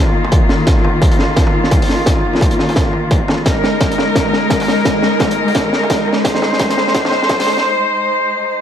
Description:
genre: half-time drum and bass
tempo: 172 BPM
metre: 4/4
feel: swing 59% on 16ths, half-time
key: unclear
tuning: A4 = 440 Hz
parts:
  - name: rich chamber cello section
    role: sustained chords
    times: 0.0-8.6 s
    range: Eb3 to C5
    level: -15 LUFS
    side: left 1 dB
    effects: sidechain pumping
  - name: crunchy breakbeat drum kit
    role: drums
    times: 0.2-7.6 s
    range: hi-hat, snare drum, toms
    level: -18 LUFS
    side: equal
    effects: high-pass filter on hats, high-pass filter on toms, high-pass filter on snare, high-pass filter on room
  - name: electronic kick drum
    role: drums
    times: 0.3-7.4 s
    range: none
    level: -16 LUFS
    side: equal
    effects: distortion
room: light reverb, studio ambience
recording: dark, warm production, high-pass filter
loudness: -12 LUFS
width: side -9 dB against mid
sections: 0.0-8.6 A section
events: build-up 0.0-8.6; drum fill 0.0-7.6; filter sweep 0.0-8.6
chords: 0.0 Eb5; 3.5 Ab

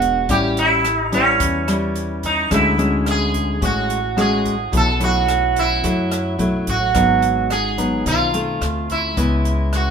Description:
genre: bossa nova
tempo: 108 BPM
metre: 4/4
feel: straight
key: unclear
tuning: A4 = 438 Hz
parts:
  - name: sitar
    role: melody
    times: 0.0-9.9 s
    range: C#4 to A4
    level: -19 LUFS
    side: right 4 dB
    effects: none
  - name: nylon-string guitar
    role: accompaniment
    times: 0.0-9.9 s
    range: F#2 to G#4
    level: -21 LUFS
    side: left 2 dB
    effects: none
  - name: upright bass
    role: bass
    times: 0.0-9.9 s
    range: E1 to F#2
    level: -24 LUFS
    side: left 1 dB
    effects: none
  - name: open jazz drum kit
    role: drums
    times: 0.0-9.9 s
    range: hi-hat, kick drum, rim click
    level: -27 LUFS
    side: equal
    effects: none
room: moderate studio reverb, RT60 0.6 s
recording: minimal, uncompressed stereo recording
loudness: -16 LUFS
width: side -6 dB against mid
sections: 0.0-9.9 A section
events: none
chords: 0.3 A7; 2.5 Dmaj9#11; 4.7 B7sus4; 6.9 G#m7; 8.6 Dm7; 9.2 C#m7

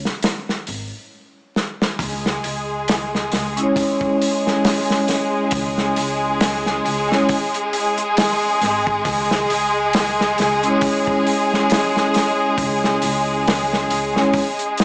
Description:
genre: trip hop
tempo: 68 BPM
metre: 4/4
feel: swing 57% on 16ths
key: C# minor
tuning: A4 = 440 Hz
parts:
  - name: crunchy breakbeat drum kit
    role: drums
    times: 0.1-14.8 s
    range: hi-hat, kick drum, snare drum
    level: -22 LUFS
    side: equal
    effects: none
  - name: upright bass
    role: bass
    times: 0.7-14.1 s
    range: G#1 to C#2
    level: -30 LUFS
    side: equal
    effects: none
  - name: clear studio violin section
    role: sustained chords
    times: 2.0-14.8 s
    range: G#3 to G#4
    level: -19 LUFS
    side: equal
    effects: none
  - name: vibraphone with medium hard mallets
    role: accompaniment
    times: 3.5-14.4 s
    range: G#3 to C#5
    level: -21 LUFS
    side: equal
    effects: harmonic tremolo, tape echo
room: moderate lush hall reverb, RT60 2.5 s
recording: vinyl crackle, small speaker sound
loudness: -16 LUFS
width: side -24 dB against mid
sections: 0.0-2.0 A section; 2.0-14.8 B section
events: drum fill 1.6-2.0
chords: 0.0 N.C.; 2.0 C#m

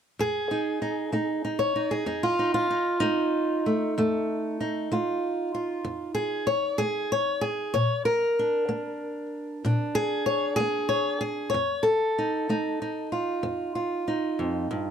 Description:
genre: acoustic country blues, solo or duo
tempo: 63 BPM (dotted quarters)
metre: 12/8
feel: straight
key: unclear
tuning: A4 = 442 Hz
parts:
  - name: fingerpicked steel-string acoustic guitar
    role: solo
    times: 0.2-14.9 s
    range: F2 to Db5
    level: -24 LUFS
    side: equal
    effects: none
room: moderate small room reverb, RT60 0.5 s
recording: dark, warm production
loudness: -24 LUFS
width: side -8 dB against mid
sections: 0.2-14.9 A section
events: none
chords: 0.2 F7; 7.7 Bb7; 11.5 F7

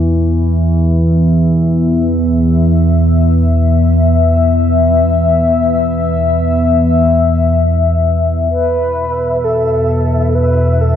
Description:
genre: ambient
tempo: free time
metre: none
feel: none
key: unclear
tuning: A4 = 440 Hz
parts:
  - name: deep dark ambient pad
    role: sustained chords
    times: 0.0-11.0 s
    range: E3 to E5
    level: -15 LUFS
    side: left 3 dB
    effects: chorus, built-in reverb
  - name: analog drone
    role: drone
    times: 0.0-11.0 s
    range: E2 to E3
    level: -12 LUFS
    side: equal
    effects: chorus
  - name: mellow horn-like synth lead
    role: melody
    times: 8.5-11.0 s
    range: A4 to B4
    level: -16 LUFS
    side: right 1 dB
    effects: chorus, tape echo
  - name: flickering grainy texture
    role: texture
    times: 8.9-11.0 s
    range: E5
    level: -22 LUFS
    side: equal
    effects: built-in reverb
room: moderate plate reverb, RT60 3.3 s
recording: dreamy mix soaked in reverb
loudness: -10 LUFS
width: side -9 dB against mid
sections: 0.0-8.5 A section; 8.5-11.0 B section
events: fade-in on ambient pad 0.0-8.5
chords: 0.0 E5

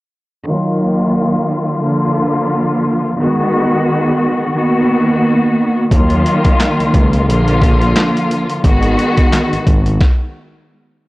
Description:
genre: hip hop, boom-bap hip-hop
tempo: 88 BPM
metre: 4/4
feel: swing 56% on 16ths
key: Eb harmonic minor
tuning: A4 = 440 Hz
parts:
  - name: warm studio string section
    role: accompaniment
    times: 0.4-10.0 s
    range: D3 to Gb4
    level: -13 LUFS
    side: equal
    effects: cassette tape, low-pass filter
  - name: smooth gliding synth bass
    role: bass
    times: 5.9-10.0 s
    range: Ab1 to Eb2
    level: -15 LUFS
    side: equal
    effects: transformer saturation
  - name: boom bap sampler-style drum kit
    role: drums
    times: 5.9-10.2 s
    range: handclaps, hi-hat, kick drum, snare drum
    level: -13 LUFS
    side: equal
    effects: none
room: digital ambience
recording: dry, gritty hardware recording, cassette tape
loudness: -11 LUFS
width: side -20 dB against mid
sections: 0.5-11.1 A section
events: filter sweep on string section 0.5-11.1; stop 10.0-11.1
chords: 0.5 Ebmadd9; 1.8 Bb; 3.2 Abm7; 4.5 Bmaj7; 5.9 Ebmadd9; 7.3 Bb; 8.6 Abm7; 10.0 N.C.

